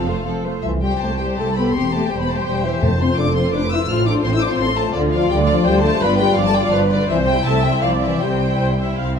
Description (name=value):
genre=quick classical-period movement for symphony orchestra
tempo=153-172 BPM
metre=3/4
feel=rubato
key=C major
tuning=A4 = 440 Hz
part: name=rich symphonic violin section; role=melody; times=0.0-9.0 s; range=D5 to F6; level=-24 LUFS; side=left 5 dB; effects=none
part: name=rich chamber violin section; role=second line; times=0.0-9.2 s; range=E4 to D5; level=-25 LUFS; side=left 2 dB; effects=none
part: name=warm studio viola section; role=accompaniment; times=0.0-9.2 s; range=F3 to F5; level=-24 LUFS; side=right 2 dB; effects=none
part: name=clear symphonic double bass section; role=bass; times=0.0-9.2 s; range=E1 to D2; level=-24 LUFS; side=right 4 dB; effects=none
part: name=warm chamber cello section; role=bass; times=0.0-9.2 s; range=C2 to D3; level=-24 LUFS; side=equal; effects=none
part: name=mellow French horn section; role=sustained chords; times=0.6-9.0 s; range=D3 to F4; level=-22 LUFS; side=left 4 dB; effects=none
part: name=timpani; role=percussion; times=2.8-3.3 s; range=F2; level=-24 LUFS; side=left 1 dB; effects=none
room=wet recital hall reverb, RT60 1.5 s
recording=dark, warm production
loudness=-16 LUFS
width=side -6 dB against mid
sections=0.6-9.2 A section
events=none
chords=0.0 F; 0.6 C5; 1.7 C/E; 2.8 F; 3.9 F/A; 4.9 Dm; 6.0 G7; 7.1 C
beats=0.26 | 0.64 1.01 1.38 | 1.74 2.10 2.46 | 2.82 3.18 3.53 | 3.89 4.24 4.59 | 4.94 5.30 5.65 | 6.01 6.36 6.72 | 7.08 7.45 7.82 | 8.21 8.60 8.99